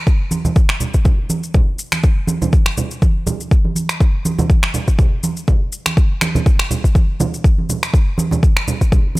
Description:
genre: house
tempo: 122 BPM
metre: 4/4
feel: swing 55% on 16ths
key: none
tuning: none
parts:
  - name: electronic kick drum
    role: drums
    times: 0.1-9.0 s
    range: none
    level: -13 LUFS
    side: equal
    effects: overdrive
  - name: electronic shaker and finger snaps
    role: drums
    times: 0.1-9.2 s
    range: none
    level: -22 LUFS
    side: equal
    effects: overdrive
  - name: congas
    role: percussion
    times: 0.3-9.2 s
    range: none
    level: -20 LUFS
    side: right 2 dB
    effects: none
room: digital ambience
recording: none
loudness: -14 LUFS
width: side -20 dB against mid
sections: 0.0-9.2 A section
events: none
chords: none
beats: | 0.07 0.56 1.05 1.54 | 2.04 2.53 3.02 3.51 | 4.00 4.50 4.99 5.48 | 5.97 6.46 6.95 7.45 | 7.94 8.43 8.92

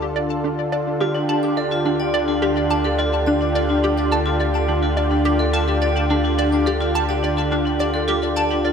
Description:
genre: ambient, sequencer-driven space music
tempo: 106 BPM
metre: 4/4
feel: straight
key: D minor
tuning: A4 = 441 Hz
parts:
  - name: lush unison pad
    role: sustained chords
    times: 0.0-8.7 s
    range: D3 to A4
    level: -22 LUFS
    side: equal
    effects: chorus
  - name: hollow square pluck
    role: riff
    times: 0.0-8.7 s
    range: D4 to A5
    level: -24 LUFS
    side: left 1 dB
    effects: analog chorus, ping-pong delay
  - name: round analog bass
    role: bass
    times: 0.0-8.7 s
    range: D2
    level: -25 LUFS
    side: equal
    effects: none
  - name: vibraphone with hard mallets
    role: arpeggios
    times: 1.0-8.7 s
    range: D4 to D6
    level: -23 LUFS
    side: right 1 dB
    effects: auto-pan, ping-pong delay
room: wet plate reverb, RT60 2.7 s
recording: dreamy mix soaked in reverb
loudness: -17 LUFS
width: side -6 dB against mid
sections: 0.0-8.7 A section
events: none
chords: 0.0 Dm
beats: 0.44 | 1.01 1.57 2.14 2.71 | 3.27 3.84 4.40 4.97 | 5.54 6.10 6.67 7.23 | 7.80 8.37

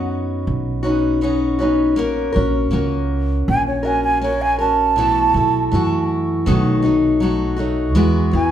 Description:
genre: acoustic folk duo or small band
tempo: 80 BPM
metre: 4/4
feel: straight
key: unclear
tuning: A4 = 440 Hz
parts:
  - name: wooden flute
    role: melody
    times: 0.0-8.5 s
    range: C#5 to A5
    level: -18 LUFS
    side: right 3 dB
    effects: none
  - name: picked steel-string acoustic guitar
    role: accompaniment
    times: 0.0-8.5 s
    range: B2 to A#4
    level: -18 LUFS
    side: left 1 dB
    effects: none
  - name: upright bass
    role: bass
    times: 0.0-8.5 s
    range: A#1 to F#2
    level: -22 LUFS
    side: right 1 dB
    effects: none
room: wet large studio reverb, RT60 1.1 s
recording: band playing live in one room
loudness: -15 LUFS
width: side -10 dB against mid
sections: 0.0-8.5 A section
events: flute solo 0.0-8.5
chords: 0.0 Badd9; 2.0 F#/A#; 5.0 B7sus4; 6.5 B7; 8.0 Eadd9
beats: 0.48 1.23 | 1.98 2.73 3.48 4.22 | 4.97 5.72 6.47 7.21 | 7.96

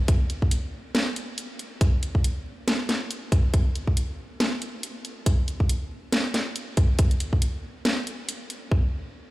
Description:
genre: dubstep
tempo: 139 BPM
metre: 4/4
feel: swing 57% on 16ths, half-time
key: none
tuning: none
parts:
  - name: electronic kick drum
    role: drums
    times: 0.1-8.8 s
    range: none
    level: -21 LUFS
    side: equal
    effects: small room ambience
  - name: garage drum kit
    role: drums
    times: 0.1-8.6 s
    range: hi-hat, snare drum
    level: -28 LUFS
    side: equal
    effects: small room ambience
room: light reverb, digital ambience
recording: played on a big sound system in a bare room, large studio reverb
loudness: -23 LUFS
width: side -18 dB against mid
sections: 0.0-8.7 A section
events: none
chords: none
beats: | 0.08 0.51 0.95 1.38 | 1.81 2.24 2.67 3.10 | 3.54 3.97 4.40 4.83 | 5.26 5.69 6.12 6.56 | 6.99 7.42 7.85 8.28 | 8.71

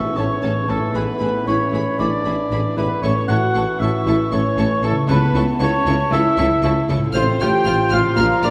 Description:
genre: cinematic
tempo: 116 BPM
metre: 4/4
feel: straight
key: A major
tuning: A4 = 440 Hz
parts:
  - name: celesta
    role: melody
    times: 0.0-8.5 s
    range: A5 to G6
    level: -34 LUFS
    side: equal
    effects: none
  - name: concert flute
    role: second line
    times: 0.0-8.5 s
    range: A5 to C#6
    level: -30 LUFS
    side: equal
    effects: none
  - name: mellow clarinet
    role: second line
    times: 0.0-8.5 s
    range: A4 to G5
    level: -29 LUFS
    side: equal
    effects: none
  - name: mellow oboe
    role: second line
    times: 0.0-8.5 s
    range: A4 to G5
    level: -26 LUFS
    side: equal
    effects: none
  - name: warm bassoon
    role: accompaniment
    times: 0.0-8.5 s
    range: E3 to F3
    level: -30 LUFS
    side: equal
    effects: none
  - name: dark French horn section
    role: sustained chords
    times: 0.0-8.5 s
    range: A3 to G4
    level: -27 LUFS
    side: equal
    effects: none
  - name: concert harp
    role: arpeggios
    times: 0.0-8.5 s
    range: A2 to F5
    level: -30 LUFS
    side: equal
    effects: none
  - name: warm studio violin section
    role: melody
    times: 0.2-8.5 s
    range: A5 to F6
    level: -37 LUFS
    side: equal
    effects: none
  - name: warm studio violin section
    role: second line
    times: 0.2-8.5 s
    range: G#4 to C5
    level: -36 LUFS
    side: equal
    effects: none
  - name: warm studio viola section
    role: accompaniment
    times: 0.2-8.5 s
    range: C#4 to F4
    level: -30 LUFS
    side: equal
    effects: none
  - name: mellow tuba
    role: bass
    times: 0.2-8.5 s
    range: A1 to C#2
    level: -28 LUFS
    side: equal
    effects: none
  - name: rich studio cello section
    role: bass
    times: 0.2-8.5 s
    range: A2 to C#3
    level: -28 LUFS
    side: equal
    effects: none
  - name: warm studio double bass section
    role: bass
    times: 0.2-8.5 s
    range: A1 to C#2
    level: -28 LUFS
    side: equal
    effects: none
room: wet scoring stage reverb, RT60 1.6 s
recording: none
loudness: -18 LUFS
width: mono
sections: 0.0-8.5 A section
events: none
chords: 0.0 A; 1.0 E7/A; 3.0 A; 5.1 A/C#; 7.2 F/A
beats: 0.43 | 0.95 1.47 1.99 2.51 | 3.03 3.55 4.06 4.58 | 5.09 5.61 6.12 6.63 | 7.15 7.67 8.19

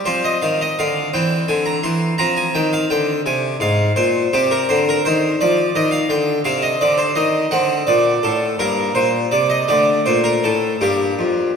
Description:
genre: classical, baroque-style suite movement for harpsichord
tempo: 56 BPM (dotted quarters)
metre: 6/8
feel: rubato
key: unclear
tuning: A4 = 442 Hz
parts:
  - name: harpsichord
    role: solo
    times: 0.0-11.6 s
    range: F2 to C6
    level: -15 LUFS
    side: equal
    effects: none
room: wet concert hall reverb, RT60 2.5 s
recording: none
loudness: -15 LUFS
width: side -6 dB against mid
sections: 0.0-11.6 A section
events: none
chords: 0.1 F5; 1.2 C; 2.2 Fm; 4.3 Cm; 6.5 Cmadd9; 7.5 D5; 8.6 Gm; 9.7 D5; 10.8 Gm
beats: | 0.07 1.15 | 2.21 3.26 | 4.33 5.40 | 6.46 7.52 | 8.60 9.69 | 10.81

